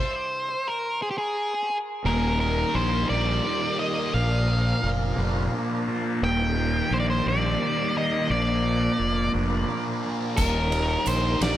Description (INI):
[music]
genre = psychedelic rock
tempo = 58 BPM (dotted quarters)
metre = 6/8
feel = straight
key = unclear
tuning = A4 = 440 Hz
[part]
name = octave-fuzz lead guitar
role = melody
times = 0.0-11.6 s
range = G4 to G5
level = -27 LUFS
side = equal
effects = distortion, tape echo
[part]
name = tonewheel organ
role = sustained chords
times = 2.0-11.6 s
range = F3 to Bb4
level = -34 LUFS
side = right 3 dB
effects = slow rotary speaker, overdrive
[part]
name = fuzz fingered electric bass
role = bass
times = 2.0-11.6 s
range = Eb1 to Bb1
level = -26 LUFS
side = equal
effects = overdrive
[part]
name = thick fuzz guitar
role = riff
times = 2.1-11.6 s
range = Eb2 to F4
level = -27 LUFS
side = left 1 dB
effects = distortion, phaser, tape echo
[part]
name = damped 70s drum kit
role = drums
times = 10.4-11.6 s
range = crash cymbal, kick drum, ride cymbal, snare drum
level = -28 LUFS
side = equal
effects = none
[part]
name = tambourine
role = percussion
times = 10.4-11.2 s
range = none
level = -39 LUFS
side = right 9 dB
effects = none
[sound]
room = small room ambience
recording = echo-heavy mix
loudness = -22 LUFS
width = side -12 dB against mid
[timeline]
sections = 0.0-2.1 A section; 2.1-11.6 B section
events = stop 0.0-2.1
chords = 0.0 N.C.; 2.1 Eb; 4.1 Bb; 6.2 Eb; 8.3 Bb; 10.4 Eb